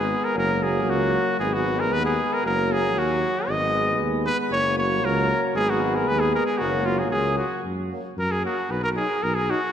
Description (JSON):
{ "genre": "balkan folk, Balkan brass band", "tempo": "115 BPM", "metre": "2/4", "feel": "straight", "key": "F# major", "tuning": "A4 = 439 Hz", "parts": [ { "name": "clear trumpet", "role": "melody", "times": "0.0-9.7 s", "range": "E#4 to D#5", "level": "-24 LUFS", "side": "equal", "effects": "none" }, { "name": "clear French horn", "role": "accompaniment", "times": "0.0-9.6 s", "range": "A#3 to D#4", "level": "-29 LUFS", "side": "left 8 dB", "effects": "none" }, { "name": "clear euphonium", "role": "accompaniment", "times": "0.0-9.6 s", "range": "F#3 to G#3", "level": "-28 LUFS", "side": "right 5 dB", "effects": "none" }, { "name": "mellow tuba", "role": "bass", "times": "0.0-9.5 s", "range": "F#1 to F#2", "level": "-28 LUFS", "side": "equal", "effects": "none" } ], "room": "wet concert hall reverb, RT60 2.5 s", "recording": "none", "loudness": "-21 LUFS", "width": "side -9 dB against mid", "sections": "0.0-7.6 A section; 7.6-9.7 B section", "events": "trumpet solo 7.6-9.7", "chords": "0.4 F#; 1.4 G#m; 2.4 F#; 3.5 G#m; 4.5 F#; 5.6 G#m; 6.6 F#; 8.7 B", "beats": "| 0.36 0.88 | 1.40 1.92 | 2.44 2.96 | 3.48 4.00 | 4.52 5.04 | 5.56 6.08 | 6.60 7.13 | 7.65 8.17 | 8.70 9.22" }